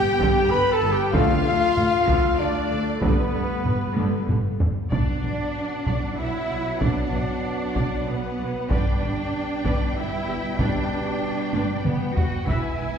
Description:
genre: cinematic, epic orchestral film score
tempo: 95 BPM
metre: 3/4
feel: straight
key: B minor from 4.9 s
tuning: A4 = 440 Hz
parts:
  - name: clear symphonic violin section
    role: melody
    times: 0.0-13.0 s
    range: B4 to B5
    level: -33 LUFS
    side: left 4 dB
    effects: none
  - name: warm symphonic violin section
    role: second line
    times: 0.0-13.0 s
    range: B4 to B5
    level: -32 LUFS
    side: left 1 dB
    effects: none
  - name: clear symphonic viola section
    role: accompaniment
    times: 0.0-12.9 s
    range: D3 to E5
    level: -33 LUFS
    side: right 1 dB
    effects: none
  - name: warm French horn section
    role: sustained chords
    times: 0.0-13.0 s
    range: B3 to B4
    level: -27 LUFS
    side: left 2 dB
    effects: none
  - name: clear trumpet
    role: stabs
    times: 0.0-4.3 s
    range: B3 to B4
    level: -28 LUFS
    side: equal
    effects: none
  - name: clear symphonic double bass section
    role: bass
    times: 0.2-12.9 s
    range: E1 to D2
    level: -30 LUFS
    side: right 3 dB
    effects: none
  - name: rich symphonic cello section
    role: bass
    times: 0.2-13.0 s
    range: D2 to F#4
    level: -30 LUFS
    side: right 2 dB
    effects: none
  - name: taiko ensemble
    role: drums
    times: 0.2-13.0 s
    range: none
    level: -25 LUFS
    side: equal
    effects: none
  - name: warm trombone section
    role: sustained chords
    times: 1.1-13.0 s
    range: B2 to A3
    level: -33 LUFS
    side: right 2 dB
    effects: none
  - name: timpani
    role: percussion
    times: 1.1-2.0 s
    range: D3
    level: -30 LUFS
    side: equal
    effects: none
room: wet scoring stage reverb, RT60 1.7 s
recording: heard from further back in the room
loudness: -21 LUFS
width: side -7 dB against mid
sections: 0.0-4.9 A section; 4.9-13.0 B section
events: drum fill 4.0-4.9, 11.5-12.5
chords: 0.0 G; 1.1 Dm; 3.0 G; 4.9 Bm; 8.7 G; 12.5 E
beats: 0.52 | 1.15 1.77 2.40 | 3.03 3.66 4.29 | 4.92 5.55 6.18 | 6.81 7.43 8.06 | 8.69 9.32 9.95 | 10.58 11.21 11.84 | 12.47

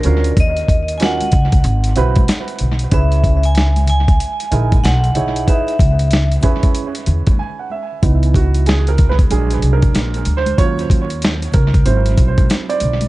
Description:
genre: hip hop, jazz-hop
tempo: 94 BPM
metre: 4/4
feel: swing 63% on 16ths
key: C# dorian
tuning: A4 = 441 Hz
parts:
  - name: vibraphone with medium hard mallets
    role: melody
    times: 0.0-6.7 s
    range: A#4 to G#5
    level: -22 LUFS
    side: left 1 dB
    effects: analog delay
  - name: dark grand piano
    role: accompaniment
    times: 0.0-13.1 s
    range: E3 to G#5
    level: -21 LUFS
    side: right 6 dB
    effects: analog delay
  - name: upright bass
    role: bass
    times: 0.0-13.1 s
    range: G#1 to E2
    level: -16 LUFS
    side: equal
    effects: none
  - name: dusty soul sampler-style drum kit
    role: drums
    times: 0.0-13.1 s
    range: hi-hat, kick drum, snare drum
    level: -15 LUFS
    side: equal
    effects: none
  - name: congas and egg shaker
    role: percussion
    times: 0.1-13.1 s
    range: none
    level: -29 LUFS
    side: left 3 dB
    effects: analog delay
room: studio ambience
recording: echo-heavy mix, vinyl crackle, nothing above 10.7 kHz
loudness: -12 LUFS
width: side -18 dB against mid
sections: 0.0-8.0 A section; 8.0-13.1 B section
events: grand piano fill 7.1-8.0; break 7.4-8.0; grand piano solo 8.0-13.1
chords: 0.4 D#m7; 1.6 G#7alt; 2.9 C#m9; 9.3 A#7b13; 10.6 D#m7; 11.9 G#7alt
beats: | 0.37 1.01 1.65 2.29 | 2.92 3.56 4.20 4.84 | 5.48 6.12 6.75 7.39 | 8.03 8.67 9.31 9.95 | 10.58 11.22 11.86 12.50

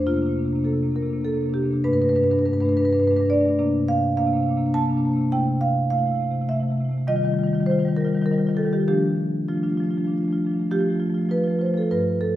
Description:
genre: classical, contemporary piece for solo marimba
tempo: 102 BPM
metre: 3/4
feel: rubato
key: unclear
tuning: A4 = 439 Hz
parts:
  - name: marimba with medium hard mallets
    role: solo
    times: 0.0-12.4 s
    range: G2 to A5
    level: -20 LUFS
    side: equal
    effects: none
room: wet recital hall reverb, RT60 1.5 s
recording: heard from further back in the room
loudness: -20 LUFS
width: side -13 dB against mid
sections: 0.0-10.7 A section; 10.7-12.4 A section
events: none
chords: 0.1 C11; 1.8 Gadd9; 3.6 C9sus4; 5.3 Fmaj7/C; 7.1 Ebadd9; 8.9 F6; 10.7 Fadd9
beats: | 0.07 0.66 1.25 | 1.85 2.43 3.01 | 3.59 4.17 4.75 | 5.33 5.91 6.49 | 7.08 7.67 8.27 | 8.88 9.49 10.10 | 10.71 11.31 11.90

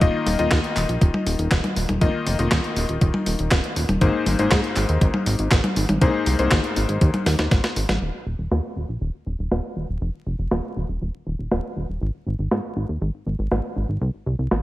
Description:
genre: italo disco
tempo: 120 BPM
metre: 4/4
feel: straight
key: unclear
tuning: A4 = 440 Hz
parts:
  - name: clear electric grand piano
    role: stabs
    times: 0.0-8.0 s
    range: Ab2 to Eb5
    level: -25 LUFS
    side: left 4 dB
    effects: ping-pong delay
  - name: chorused synth bass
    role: bass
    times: 0.0-14.6 s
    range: Eb1 to Ab2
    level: -24 LUFS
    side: equal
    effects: tube saturation
  - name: clean 12-bit digital drum machine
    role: drums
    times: 0.0-14.6 s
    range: handclaps, hi-hat, snare drum, toms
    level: -24 LUFS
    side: equal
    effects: low-pass filter on hats, low-pass filter on toms, low-pass filter on snare, gated reverb
  - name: electronic kick drum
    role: drums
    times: 0.0-7.6 s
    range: none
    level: -19 LUFS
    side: equal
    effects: none
room: little or no reverb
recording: vinyl crackle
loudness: -20 LUFS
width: side -16 dB against mid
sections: 0.0-8.0 A section; 8.0-14.6 B section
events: drum fill 7.3-8.0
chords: 0.0 Ebsus2; 4.0 Abadd9; 8.0 N.C.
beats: | 0.01 0.51 1.01 1.51 | 2.01 2.51 3.01 3.51 | 4.01 4.51 5.01 5.51 | 6.01 6.51 7.01 7.51 | 8.01 8.51 9.01 9.51 | 10.01 10.51 11.01 11.51 | 12.01 12.51 13.01 13.51 | 14.01 14.51

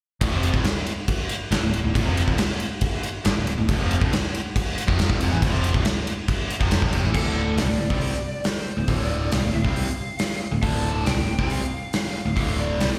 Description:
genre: hard rock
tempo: 138 BPM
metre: 4/4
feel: straight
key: D minor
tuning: A4 = 440 Hz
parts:
  - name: cranked stack guitar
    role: riff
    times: 0.2-13.0 s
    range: D2 to C4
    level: -31 LUFS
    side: equal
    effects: overdrive, phaser, slapback echo
  - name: tight distorted guitar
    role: riff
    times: 0.2-13.0 s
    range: D2 to C4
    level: -33 LUFS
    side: equal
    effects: distortion, slapback echo
  - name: fingered electric bass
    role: bass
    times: 0.2-13.0 s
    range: D1 to C2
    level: -27 LUFS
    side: equal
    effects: none
  - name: gated 80s drum kit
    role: drums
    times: 0.2-12.9 s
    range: crash cymbal, hi-hat, kick drum, ride cymbal, snare drum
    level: -27 LUFS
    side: equal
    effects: none
  - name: lead guitar through a small cranked amp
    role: melody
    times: 7.2-13.0 s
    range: A4 to A5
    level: -33 LUFS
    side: equal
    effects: overdrive, slapback echo, digital delay
room: moderate club reverb, RT60 0.6 s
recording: live gig heard through the venue's PA, recital hall reverb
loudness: -23 LUFS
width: mono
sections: 0.2-7.2 A section; 7.2-13.0 B section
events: none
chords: 0.2 Dm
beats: | 0.21 0.65 1.08 1.51 | 1.95 2.38 2.82 3.25 | 3.68 4.12 4.55 4.98 | 5.42 5.85 6.28 6.72 | 7.15 7.58 8.02 8.45 | 8.89 9.32 9.76 10.19 | 10.62 11.06 11.49 11.93 | 12.36 12.80

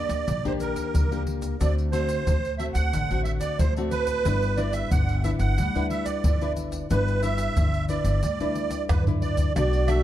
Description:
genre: samba and choro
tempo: 90 BPM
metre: 4/4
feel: straight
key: G major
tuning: A4 = 445 Hz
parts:
  - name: musette accordion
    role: melody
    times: 0.0-10.0 s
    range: Bb4 to F#5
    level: -29 LUFS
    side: right 5 dB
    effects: tape echo
  - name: nylon-string guitar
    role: accompaniment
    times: 0.0-10.0 s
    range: A2 to B4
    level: -30 LUFS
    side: left 5 dB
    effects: none
  - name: upright bass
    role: bass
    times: 0.0-10.0 s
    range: G1 to F#2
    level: -27 LUFS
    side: equal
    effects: none
  - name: tube shaker, surdo, pandeiro and tamborim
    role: percussion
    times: 0.1-10.0 s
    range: none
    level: -27 LUFS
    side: equal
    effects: none
  - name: clear trombone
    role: second line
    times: 9.6-10.0 s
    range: F#4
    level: -27 LUFS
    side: right 2 dB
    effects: none
room: moderate studio reverb, RT60 0.6 s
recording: dark, warm production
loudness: -22 LUFS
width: side -12 dB against mid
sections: 0.0-9.6 A section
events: drum fill 8.9-9.6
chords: 0.0 Ebmaj7; 1.6 D7; 4.3 G6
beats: 0.28 0.94 | 1.60 2.27 2.93 3.59 | 4.26 4.92 5.58 6.25 | 6.91 7.57 8.23 8.90 | 9.56

